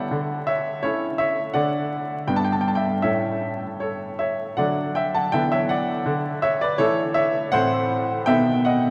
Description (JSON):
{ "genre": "classical-period piano sonatina", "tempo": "78-84 BPM", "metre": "2/4", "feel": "rubato", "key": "unclear", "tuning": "A4 = 440 Hz", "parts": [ { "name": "clear baby grand piano", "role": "solo", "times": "0.0-8.9 s", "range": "G2 to A5", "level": "-23 LUFS", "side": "equal", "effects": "none" } ], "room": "wet cathedral reverb, RT60 5.6 s", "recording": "in a vast, echoing space, vinyl crackle", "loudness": "-23 LUFS", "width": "mono", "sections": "0.0-8.9 A section", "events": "none", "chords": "0.1 A/D; 1.6 D; 2.3 G; 3.0 A; 4.6 D; 5.3 E5/D; 6.1 A/D; 7.5 F#m7b5/A; 8.3 B7", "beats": "| 0.11 0.83 | 1.55 2.29 | 3.05 3.82 | 4.59 5.33 | 6.07 6.80 | 7.53 8.28" }